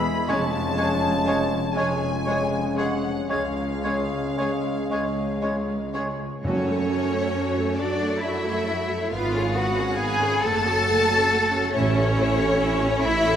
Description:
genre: classical, slow romantic movement for symphony orchestra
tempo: 37-47 BPM (dotted quarters)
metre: 6/8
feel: rubato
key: F# minor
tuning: A4 = 440 Hz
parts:
  - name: rich chamber violin section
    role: melody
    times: 0.0-13.4 s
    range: A4 to B5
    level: -33 LUFS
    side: left 4 dB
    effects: none
  - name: mellow French horn section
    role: sustained chords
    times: 0.0-6.1 s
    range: B3 to G#4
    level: -29 LUFS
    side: left 4 dB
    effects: none
  - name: warm trombone section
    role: sustained chords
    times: 0.0-6.1 s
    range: C#3 to G#3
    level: -30 LUFS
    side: right 1 dB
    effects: none
  - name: rich chamber cello section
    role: bass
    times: 0.0-13.4 s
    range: C#2 to A4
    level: -26 LUFS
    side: equal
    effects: none
  - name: rich chamber double bass section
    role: bass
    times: 0.0-13.4 s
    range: E1 to F#2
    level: -29 LUFS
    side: right 2 dB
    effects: none
  - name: clear chamber violin section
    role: second line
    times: 0.3-13.4 s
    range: G#4 to A5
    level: -30 LUFS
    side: left 2 dB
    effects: none
  - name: mellow cor anglais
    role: second line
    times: 0.3-6.1 s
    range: C#5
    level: -31 LUFS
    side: equal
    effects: none
  - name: silver concert flute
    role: second line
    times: 0.3-6.1 s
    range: G#6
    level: -35 LUFS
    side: left 1 dB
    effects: none
  - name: clear bassoon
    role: accompaniment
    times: 0.3-6.1 s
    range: G#3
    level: -33 LUFS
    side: right 1 dB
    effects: none
  - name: rich chamber viola section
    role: accompaniment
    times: 0.3-13.4 s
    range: F#3 to B4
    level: -29 LUFS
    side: right 2 dB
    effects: none
  - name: timpani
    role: percussion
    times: 6.4-7.8 s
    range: F#2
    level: -32 LUFS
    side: equal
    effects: none
room: wet concert hall reverb, RT60 1.7 s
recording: lossy compression artefacts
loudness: -21 LUFS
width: side -9 dB against mid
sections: 0.0-6.5 A section; 6.5-13.4 B section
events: none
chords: 0.3 C#/E#; 3.3 C#; 6.5 F#m; 9.1 C#7/G#; 10.4 F#m; 11.7 A

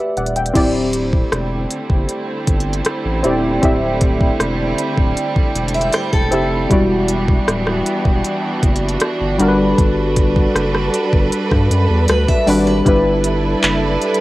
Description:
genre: contemporary R&B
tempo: 78 BPM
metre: 4/4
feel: straight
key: unclear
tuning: A4 = 440 Hz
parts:
  - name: warm analog keys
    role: accompaniment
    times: 0.0-14.2 s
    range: G3 to G5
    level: -19 LUFS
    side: left 1 dB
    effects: chorus, cassette tape
  - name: picked steel-string acoustic guitar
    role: arpeggios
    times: 0.0-0.3, 5.7-6.7, 12.1-13.0 s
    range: A4 to F#5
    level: -23 LUFS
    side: equal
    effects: cassette tape, tape echo
  - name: saturated sub bass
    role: bass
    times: 0.2-14.0 s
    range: D1 to G2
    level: -20 LUFS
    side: equal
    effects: none
  - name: smooth R&B drum kit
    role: drums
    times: 0.2-14.2 s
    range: crash cymbal, handclaps, hi-hat, kick drum, rim click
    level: -17 LUFS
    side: equal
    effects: cassette tape
  - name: clear symphonic string section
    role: sustained chords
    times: 0.5-14.2 s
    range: D3 to B4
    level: -20 LUFS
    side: right 2 dB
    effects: cassette tape
room: light reverb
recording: home recording on cassette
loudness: -14 LUFS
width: side -17 dB against mid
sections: 0.6-12.9 A section; 12.9-14.2 B section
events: none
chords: 0.0 Gmaj9; 0.6 D9sus4; 6.7 Em9; 9.4 Gmaj7; 12.9 G6

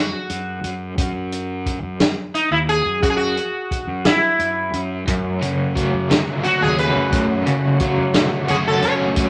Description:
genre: psychedelic rock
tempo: 59 BPM (dotted quarters)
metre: 6/8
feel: straight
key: F# dorian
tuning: A4 = 440 Hz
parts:
  - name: sitar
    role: melody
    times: 0.0-8.9 s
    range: D#4 to C#5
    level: -22 LUFS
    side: equal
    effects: none
  - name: fuzz fingered electric bass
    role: bass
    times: 0.0-9.3 s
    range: D#2 to F#2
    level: -28 LUFS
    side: equal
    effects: overdrive
  - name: vintage drum kit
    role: drums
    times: 0.3-9.3 s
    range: hi-hat, kick drum, snare drum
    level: -23 LUFS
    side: equal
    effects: none
  - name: phased string machine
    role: sustained chords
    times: 5.1-9.3 s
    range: A3 to F#5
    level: -30 LUFS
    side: equal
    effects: ensemble chorus, phaser
  - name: crunchy overdriven guitar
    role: riff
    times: 5.1-9.3 s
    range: F#2 to F#4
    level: -22 LUFS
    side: equal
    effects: tremolo
room: moderate studio ambience, RT60 0.5 s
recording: none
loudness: -20 LUFS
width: mono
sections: 0.0-9.3 A section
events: none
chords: 0.0 F#m

